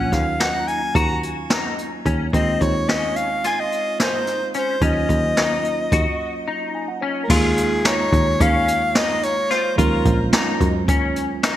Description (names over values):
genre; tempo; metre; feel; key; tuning
progressive instrumental, band music in an uneven meter; 217 BPM (eighths); 9/8; straight; Eb dorian; A4 = 439 Hz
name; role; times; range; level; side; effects
warm soprano saxophone; melody; 0.0-10.4 s; Ab4 to Bb5; -22 LUFS; left 1 dB; digital delay
mellow tine electric piano; accompaniment; 0.0-11.6 s; Gb3 to Ab5; -28 LUFS; right 4 dB; medium stereo tremolo
semi-hollow electric guitar; arpeggios; 0.0-11.6 s; C4 to Gb4; -25 LUFS; left 4 dB; ensemble chorus
picked electric bass; bass; 0.0-11.6 s; Bb1 to Gb2; -23 LUFS; equal; none
jazz brush drum kit; drums; 0.1-11.6 s; crash cymbal, hi-hat, kick drum, snare drum; -22 LUFS; equal; gated reverb
room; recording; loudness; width
moderate lush hall reverb, RT60 2.2 s; bright 1980s-style digital production; -17 LUFS; side -12 dB against mid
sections
0.0-7.3 A section; 7.3-11.6 B section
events
break 6.1-7.3; tine electric piano fill 6.5-7.3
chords
0.0 Ebm7; 2.3 Dbmaj9/Eb; 4.8 Ebm7; 7.3 Db69/Eb; 9.8 Ebm11